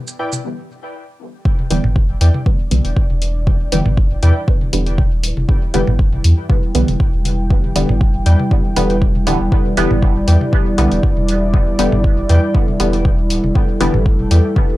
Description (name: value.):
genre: dub techno.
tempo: 119 BPM.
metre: 4/4.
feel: swing 53% on 16ths.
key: E minor.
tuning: A4 = 440 Hz.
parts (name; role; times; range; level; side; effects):
dark analog pad; sustained chords; 0.0-14.8 s; G3 to G5; -22 LUFS; equal; chorus, sidechain pumping.
electronic shaker and hi-hat; drums; 0.1-14.4 s; none; -25 LUFS; left 1 dB; none.
warbly lo-fi synth keys; riff; 0.2-14.4 s; E4 to G5; -27 LUFS; left 1 dB; chorus, sidechain pumping, dub echo.
electronic toms; percussion; 0.3-14.7 s; none; -23 LUFS; equal; overdrive, sidechain pumping on toms.
electronic kick drum; drums; 1.5-14.7 s; none; -15 LUFS; equal; none.
filtered dub chord stab; stabs; 1.7-14.0 s; D3 to B3; -21 LUFS; equal; chorus, phaser, sidechain pumping, dub echo.
warm sub bass; bass; 1.7-14.4 s; D1 to E2; -16 LUFS; equal; transformer saturation, sidechain pumping.
room: digital ambience.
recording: dry, gritty hardware recording, cassette tape.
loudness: -13 LUFS.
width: side -17 dB against mid.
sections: 0.0-1.5 A section; 1.5-14.8 B section.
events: break 0.4-1.5.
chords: 0.0 Em7 (rootless); 1.5 Em7.